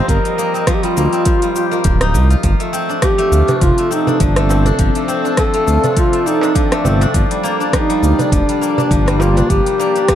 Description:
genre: organic downtempo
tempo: 102 BPM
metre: 4/4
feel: swing 56% on 16ths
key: unclear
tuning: A4 = 440 Hz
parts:
  - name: mellow duduk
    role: melody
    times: 0.0-10.2 s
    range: D4 to Bb4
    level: -18 LUFS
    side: equal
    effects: tape echo
  - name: warm analog pad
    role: sustained chords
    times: 0.0-10.2 s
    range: Bb3 to Eb5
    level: -23 LUFS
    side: left 1 dB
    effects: chorus, sidechain pumping
  - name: steel-string zither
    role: arpeggios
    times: 0.0-10.2 s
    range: F3 to G4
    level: -19 LUFS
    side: left 2 dB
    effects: ping-pong delay
  - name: smooth gliding synth bass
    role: bass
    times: 0.1-9.6 s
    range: D1 to D2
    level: -14 LUFS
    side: equal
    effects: sidechain pumping
  - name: deep house drum kit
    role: drums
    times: 0.1-10.2 s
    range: cabasa, hi-hat, rim click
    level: -22 LUFS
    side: equal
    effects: none
  - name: electronic kick drum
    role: drums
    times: 0.1-10.2 s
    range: none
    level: -17 LUFS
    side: equal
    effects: none
  - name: darbuka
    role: percussion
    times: 3.5-10.1 s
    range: none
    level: -24 LUFS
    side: right 2 dB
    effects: none
room: light reverb, small room ambience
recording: dark, warm production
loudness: -12 LUFS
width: side -10 dB against mid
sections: 0.0-10.2 A section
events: none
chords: 0.0 F9sus4; 2.4 Dm7; 7.1 Bb6

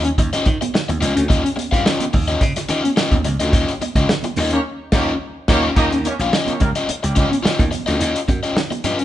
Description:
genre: funk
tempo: 107 BPM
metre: 4/4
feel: straight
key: Eb mixolydian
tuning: A4 = 440 Hz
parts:
  - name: overdriven electric guitar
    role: accompaniment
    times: 0.0-9.0 s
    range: Db4 to F5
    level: -20 LUFS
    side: left 3 dB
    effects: none
  - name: slap bass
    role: bass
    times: 0.0-9.0 s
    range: Bb1 to Eb3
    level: -22 LUFS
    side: right 1 dB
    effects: none
  - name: warm soul drum kit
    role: drums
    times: 0.0-9.0 s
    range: crash cymbal, hi-hat, kick drum, snare drum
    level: -19 LUFS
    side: equal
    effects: none
  - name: congas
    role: percussion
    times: 0.6-9.0 s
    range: none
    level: -30 LUFS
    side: right 7 dB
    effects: none
  - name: clear horn section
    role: second line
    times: 4.5-7.3 s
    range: Db3 to Eb5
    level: -24 LUFS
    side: right 2 dB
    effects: none
room: moderate large studio reverb, RT60 1.4 s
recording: band playing live in one room, nothing above 10.3 kHz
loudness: -16 LUFS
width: side -13 dB against mid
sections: 0.0-5.8 A section; 5.8-9.0 B section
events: band accent 3.5-5.8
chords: 0.0 Eb9

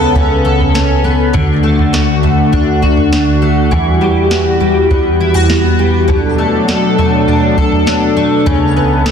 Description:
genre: dream pop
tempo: 101 BPM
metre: 4/4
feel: straight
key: E dorian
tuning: A4 = 442 Hz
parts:
  - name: warm analog pad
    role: sustained chords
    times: 0.0-9.1 s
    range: C#2 to A4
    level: -13 LUFS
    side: right 1 dB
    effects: chorus
  - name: fingerpicked twelve-string acoustic guitar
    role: arpeggios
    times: 0.0-9.1 s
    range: B2 to A4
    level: -13 LUFS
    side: left 3 dB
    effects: analog chorus, ping-pong delay
  - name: soft vintage rhythm box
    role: drums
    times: 0.2-9.1 s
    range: kick drum, snare drum, toms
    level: -16 LUFS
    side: right 1 dB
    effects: none
room: wet recital hall reverb, RT60 1.6 s, digital ambience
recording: dense, heavily limited modern master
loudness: -9 LUFS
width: side -7 dB against mid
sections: 0.0-9.1 A section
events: none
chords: 0.0 Aadd9/C#; 1.3 D; 3.7 Emadd9; 6.1 Bm7; 8.5 Aadd9/C#

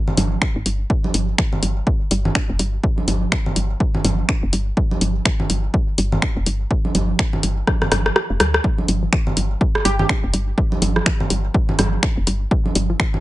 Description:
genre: minimal techno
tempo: 124 BPM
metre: 4/4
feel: swing 59% on 16ths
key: unclear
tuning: A4 = 443 Hz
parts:
  - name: electronic congas and rim click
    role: percussion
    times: 0.1-13.2 s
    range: none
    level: -24 LUFS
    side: right 2 dB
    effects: digital delay
  - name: hollow square pluck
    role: riff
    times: 0.2-13.0 s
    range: F3 to G4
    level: -27 LUFS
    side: equal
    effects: chorus, sidechain pumping, dub echo
  - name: woody FM bass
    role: bass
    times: 0.2-12.9 s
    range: F1 to D2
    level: -21 LUFS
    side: equal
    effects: sidechain pumping
  - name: punchy analog drum machine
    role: drums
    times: 0.2-13.1 s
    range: finger snaps, hi-hat, rim click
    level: -21 LUFS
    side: left 1 dB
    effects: none
  - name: electronic kick drum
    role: drums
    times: 0.4-13.1 s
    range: none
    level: -20 LUFS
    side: equal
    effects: none
  - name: plucky unison lead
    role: melody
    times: 9.9-10.1 s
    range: G4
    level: -24 LUFS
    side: right 2 dB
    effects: digital delay
room: little or no reverb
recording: nothing above 10.4 kHz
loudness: -17 LUFS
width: side -16 dB against mid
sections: 0.0-13.2 A section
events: filter sweep on synth arpeggio sound 0.0-13.2; drum fill 7.7-8.6; kick drops out 8.2-8.6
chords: none

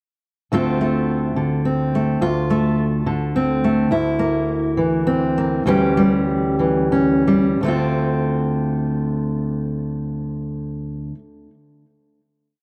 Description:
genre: indie folk with a building arrangement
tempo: 56-71 BPM (dotted quarters)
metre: 6/8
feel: straight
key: D minor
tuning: A4 = 439 Hz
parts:
  - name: fingerpicked steel-string acoustic guitar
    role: solo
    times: 0.5-11.2 s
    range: D2 to G4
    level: -20 LUFS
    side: equal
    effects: tape echo
room: light reverb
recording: none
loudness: -20 LUFS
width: mono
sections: 0.5-7.6 breakdown; 7.6-11.9 final chord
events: slowing down 3.9-7.6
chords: 0.5 Dm7; 3.9 C7/D; 5.7 Dsus24; 7.6 Dm7

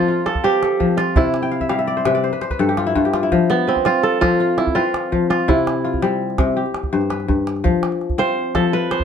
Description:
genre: west african traditional, West African string and xylophone music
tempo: 111 BPM (dotted quarters)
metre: 12/8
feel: straight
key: F lydian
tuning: A4 = 441 Hz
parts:
  - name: kora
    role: melody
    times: 0.0-9.0 s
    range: B3 to C5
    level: -19 LUFS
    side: right 4 dB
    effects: none
  - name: kora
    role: arpeggios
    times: 0.0-9.0 s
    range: G2 to G5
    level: -18 LUFS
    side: left 4 dB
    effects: none
  - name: calabash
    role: percussion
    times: 0.3-9.0 s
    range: none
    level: -23 LUFS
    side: right 2 dB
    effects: none
room: moderate studio reverb, RT60 0.6 s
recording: dark, warm production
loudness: -16 LUFS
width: side -7 dB against mid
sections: 0.0-9.0 A section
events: kora fill 1.4-3.3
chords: 0.0 F; 1.2 C; 2.2 N.C.; 3.3 F5; 5.5 C; 6.6 G; 7.6 F

